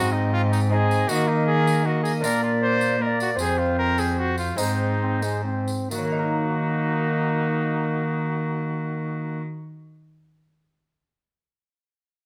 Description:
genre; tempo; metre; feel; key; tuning
classical, renaissance-style consort dance; 130-158 BPM; 3/4; straight; Eb dorian; A4 = 439 Hz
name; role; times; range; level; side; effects
mellow cornet; melody; 0.0-9.4 s; Eb4 to C5; -30 LUFS; equal; none
alto recorder; second line; 0.0-9.4 s; Gb4 to Eb5; -33 LUFS; equal; none
clear trombone; accompaniment; 0.0-9.4 s; Ab3 to C4; -30 LUFS; equal; none
lute; accompaniment; 0.0-10.0 s; F2 to Bb4; -34 LUFS; equal; none
dark cello; bass; 0.0-9.4 s; F2 to Eb3; -28 LUFS; equal; none
tambourine; percussion; 0.5-6.1 s; none; -38 LUFS; equal; none
room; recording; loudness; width
moderate stone room reverb, RT60 1.1 s; none; -23 LUFS; mono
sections
0.0-5.9 A section; 5.9-8.7 B section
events
slowing down 2.8-5.9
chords
0.0 Ab; 1.1 Eb5; 2.2 Bb; 3.4 F5; 4.6 Ab; 5.9 Ebm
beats
0.34 0.72 | 1.10 1.48 1.86 | 2.24 2.62 3.00 | 3.38 3.77 4.17 | 4.58 5.01 5.45 | 5.90 6.36 6.82 | 7.28 7.74 8.20

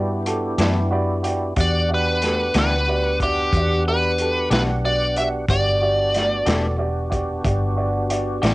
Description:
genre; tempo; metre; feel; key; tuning
slow blues; 61 BPM (dotted quarters); 12/8; straight; E minor; A4 = 440 Hz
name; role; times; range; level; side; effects
biting lead guitar; melody; 0.0-6.8 s; G4 to E5; -21 LUFS; equal; overdrive, cassette tape
warm upright piano; accompaniment; 0.0-8.5 s; F#4 to B5; -26 LUFS; right 2 dB; cassette tape
tonewheel organ; sustained chords; 0.0-8.5 s; B3 to F#5; -28 LUFS; equal; slow rotary speaker, overdrive, chorus vibrato, cassette tape
vintage muted fingered electric bass; bass; 0.0-8.5 s; E1 to G2; -23 LUFS; equal; none
vintage drum kit; drums; 0.3-8.5 s; hi-hat, kick drum, snare drum; -25 LUFS; equal; none
semi-hollow electric guitar; accompaniment; 0.6-8.5 s; E3 to G4; -26 LUFS; left 3 dB; harmonic tremolo, cassette tape
room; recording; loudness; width
little or no reverb; home recording on cassette, nothing above 10.4 kHz; -18 LUFS; side -20 dB against mid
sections
0.0-8.5 A section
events
upright piano fill 0.6-1.6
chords
0.0 Em7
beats
0.58 | 1.56 2.54 3.52 4.50 | 5.49 6.46 7.44 8.42

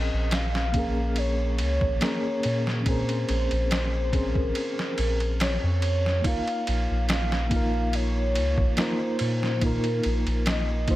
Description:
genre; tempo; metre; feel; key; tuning
trip hop; 71 BPM; 4/4; swing 53% on 16ths; Bb minor; A4 = 440 Hz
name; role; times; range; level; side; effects
pure breathy sine lead; melody; 0.0-11.0 s; Bb4 to F5; -31 LUFS; equal; analog chorus, tape echo
mellow reed electric piano; accompaniment; 0.0-11.0 s; Bb3 to C5; -30 LUFS; equal; fast tremolo, harmonic tremolo, vintage 12-bit sampler grit, low-pass filter, tape echo
soft dub sub bass; bass; 0.0-11.0 s; Bb1 to Bb2; -26 LUFS; equal; none
trip hop sampler-style drum kit; drums; 0.3-11.0 s; kick drum, ride cymbal, snare drum; -29 LUFS; equal; overdrive
room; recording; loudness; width
light reverb, digital ambience; vinyl crackle; -23 LUFS; side -16 dB against mid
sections
0.0-11.0 A section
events
filter sweep on reed electric piano 0.0-11.0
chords
0.0 Bbm9; 6.2 Ebsus2/Bb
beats
0.33 1.17 2.02 | 2.86 3.71 4.55 5.39 | 6.24 7.09 7.93 8.78 | 9.62 10.47

